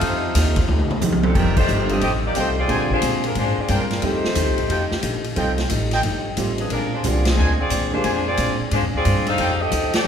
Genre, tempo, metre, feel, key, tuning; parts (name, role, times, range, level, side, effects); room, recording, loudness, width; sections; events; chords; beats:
jazz, big band swing; 179 BPM; 4/4; swing 65% on 8ths; F mixolydian; A4 = 440 Hz
clear trumpet section; melody; 0.0-1.0 s; Eb4 to F5; -27 LUFS; left 1 dB
bright trombone section; second line; 0.0-1.0 s; A3 to F4; -31 LUFS; right 1 dB
hollow-body jazz guitar; accompaniment; 0.0-10.1 s; Bb2 to G4; -28 LUFS; left 3 dB
upright bass; bass; 0.0-10.1 s; F1 to Bb2; -23 LUFS; equal
swinging big-band drum kit; drums; 0.0-10.0 s; crash cymbal, hi-hat, kick drum, ride cymbal, snare drum, toms; -24 LUFS; equal
warm saxophone section; melody; 1.2-10.1 s; F3 to F5; -22 LUFS; left 1 dB
clear trumpet section; stabs; 1.4-9.5 s; D4 to Ab5; -28 LUFS; right 1 dB
warm concert grand piano; accompaniment; 1.9-8.0 s; D3 to A4; -28 LUFS; right 4 dB
moderate scoring stage reverb, RT60 2.1 s; recorded in a church or concert hall; -18 LUFS; side -8 dB against mid
0.0-1.4 A section; 1.4-10.1 B section
drum fill 0.7-1.4; band accent 1.5, 7.2, 9.9
0.0 F9; 2.7 Bb9; 4.0 F9; 6.7 Bb9; 9.4 F9
| 0.02 0.35 0.69 1.02 | 1.35 1.69 2.02 2.36 | 2.69 3.03 3.36 3.70 | 4.03 4.37 4.70 5.04 | 5.37 5.71 6.04 6.38 | 6.71 7.04 7.38 7.72 | 8.05 8.39 8.72 9.06 | 9.39 9.73 10.06